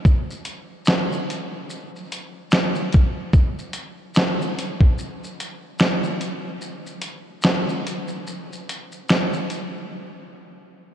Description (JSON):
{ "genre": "hip hop", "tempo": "73 BPM", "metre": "4/4", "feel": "swing 60% on 16ths", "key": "none", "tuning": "none", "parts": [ { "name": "dusty soul sampler-style drum kit", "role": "drums", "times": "0.1-9.7 s", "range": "finger snaps, hi-hat, kick drum, shaker, snare drum", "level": "-20 LUFS", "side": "equal", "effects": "none" } ], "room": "moderate huge ambient reverb, RT60 4.3 s", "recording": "cassette tape", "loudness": "-20 LUFS", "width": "side -10 dB against mid", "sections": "0.0-9.9 A section; 9.9-10.9 B section", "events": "break 6.6-9.9", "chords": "none" }